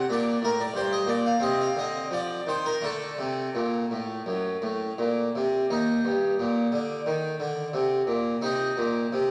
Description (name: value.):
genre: classical, baroque-style suite movement for harpsichord.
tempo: 81-94 BPM.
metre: 4/4.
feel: rubato.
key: unclear.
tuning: A4 = 441 Hz.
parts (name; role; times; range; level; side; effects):
harpsichord; solo; 0.0-9.3 s; Eb2 to F5; -27 LUFS; equal; none.
room: wet scoring stage reverb, RT60 1.5 s.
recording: none.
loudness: -27 LUFS.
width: mono.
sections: 0.0-5.7 A section; 5.7-9.3 B section.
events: none.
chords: 0.1 Gm; 1.4 Cm; 2.8 D; 5.7 Eb; 8.4 Cm.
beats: | 0.10 0.75 1.41 2.11 | 2.82 3.54 4.27 4.99 | 5.71 6.40 7.07 7.74 | 8.42 9.11.